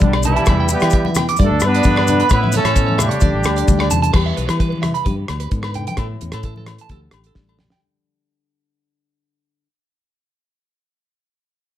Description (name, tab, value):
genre	highlife guitar band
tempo	131 BPM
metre	4/4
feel	straight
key	E minor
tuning	A4 = 440 Hz
part	warm horn section	melody	0.0-3.9 s	D3 to B4	-19 LUFS	right 3 dB	plate reverb
part	breathy trumpet	second line	0.0-3.9 s	G3 to E4	-27 LUFS	left 5 dB	plate reverb
part	nylon-string guitar	accompaniment	0.0-9.7 s	E2 to G4	-25 LUFS	left 7 dB	plate reverb
part	fingered electric bass	bass	0.0-7.7 s	A1 to E3	-20 LUFS	equal	none
part	damped 70s drum kit	drums	0.0-7.8 s	crash cymbal, hi-hat, kick drum, rim click, snare drum	-19 LUFS	equal	none
part	congas	percussion	0.0-7.8 s	none	-26 LUFS	left 2 dB	none
part	clean electric guitar	arpeggios	0.1-7.8 s	A4 to D6	-24 LUFS	right 7 dB	slapback echo, plate reverb
part	agogo bells	percussion	0.1-7.6 s	none	-29 LUFS	left 11 dB	none
part	maracas	percussion	0.2-4.1 s	none	-26 LUFS	left 8 dB	none
room	light reverb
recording	none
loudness	-14 LUFS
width	side -12 dB against mid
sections	0.0-4.1 A section; 4.1-7.8 B section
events	fade-out 4.1-7.8; drum fill 7.4-7.8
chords	0.5 Em; 1.4 G; 2.3 A; 3.2 Dsus4; 4.1 Em; 5.1 G; 6.0 A; 6.9 Dsus4